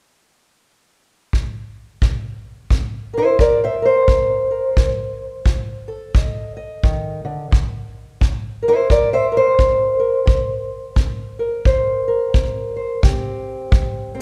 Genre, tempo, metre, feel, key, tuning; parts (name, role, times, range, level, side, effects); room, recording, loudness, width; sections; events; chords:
acoustic country blues, solo or duo; 87 BPM; 4/4; swing 61% on 8ths; A4 = 440 Hz
kick drum; drums; 1.3-13.9 s; -21 LUFS; equal
fingerpicked old ladder-braced acoustic guitar; melody; 2.0-14.2 s; G2 to E5; -20 LUFS; equal
light reverb; -18 LUFS; mono
0.0-2.0 A section; 2.0-13.0 B section; 13.0-14.2 C section
steel-string acoustic guitar solo 13.0-14.2
0.0 N.C.; 2.0 C7(no3); 4.8 F7; 7.5 C7(no3); 13.0 C5